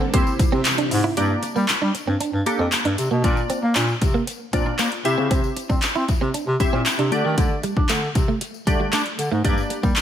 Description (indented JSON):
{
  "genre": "dance-pop",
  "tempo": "116 BPM",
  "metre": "4/4",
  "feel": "straight",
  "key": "G dorian",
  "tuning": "A4 = 442 Hz",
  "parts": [
    { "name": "glassy wavetable pluck", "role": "accompaniment", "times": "0.0-10.0 s", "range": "A3 to E5", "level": "-26 LUFS", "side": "left 1 dB", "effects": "chorus, sidechain pumping, slapback echo" },
    { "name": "string machine, full ensemble", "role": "sustained chords", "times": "0.0-1.2 s", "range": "C3 to A4", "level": "-29 LUFS", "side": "left 1 dB", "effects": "ensemble chorus, sidechain pumping" },
    { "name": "direct-recorded clean electric guitar", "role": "riff", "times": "0.0-9.9 s", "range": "G3 to E4", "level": "-27 LUFS", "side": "right 4 dB", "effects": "ensemble chorus" },
    { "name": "warm bass clarinet", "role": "bass", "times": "0.0-10.0 s", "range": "F2 to D4", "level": "-23 LUFS", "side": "equal", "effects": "sidechain pumping" },
    { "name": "pop drum kit", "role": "drums", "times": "0.1-10.0 s", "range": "handclaps, hi-hat, kick drum", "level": "-22 LUFS", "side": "equal", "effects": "overdrive" },
    { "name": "tambourine", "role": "percussion", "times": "0.1-10.0 s", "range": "none", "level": "-37 LUFS", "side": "left 9 dB", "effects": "none" }
  ],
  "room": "light reverb",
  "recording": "none",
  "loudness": "-18 LUFS",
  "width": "side -10 dB against mid",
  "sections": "0.0-1.2 A section; 1.2-10.0 B section",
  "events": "none",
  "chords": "0.1 C; 1.2 Gm; 3.2 Bb; 5.0 C; 7.1 Dsus4; 9.4 Gm",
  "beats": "0.14 0.65 | 1.17 1.69 2.20 2.72 | 3.24 3.76 4.27 4.79 | 5.31 5.83 6.34 6.86 | 7.38 7.89 8.41 8.93 | 9.45 9.96"
}